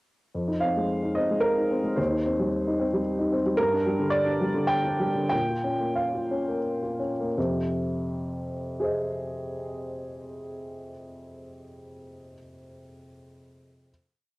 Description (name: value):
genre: neoclassical minimalist piano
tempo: 83-113 BPM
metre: 3/4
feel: rubato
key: F minor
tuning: A4 = 440 Hz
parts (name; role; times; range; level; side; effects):
- dark upright piano; solo; 0.3-13.9 s; Eb2 to G5; -25 LUFS; equal; cassette tape
room: light reverb, small room ambience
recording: home recording on cassette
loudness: -24 LUFS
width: side -20 dB against mid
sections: 0.3-7.4 A section; 7.4-11.7 final chord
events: slowing down 2.8-7.4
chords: 0.3 Fm7; 2.0 Cm/Eb; 3.6 Gm; 5.3 Bbm; 7.4 Fm7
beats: | 0.34 0.89 1.43 | 1.98 2.52 3.05 | 3.58 4.13 4.70 | 5.31 5.96 6.64 | 7.36 8.07 8.79 | 9.51 10.23 10.95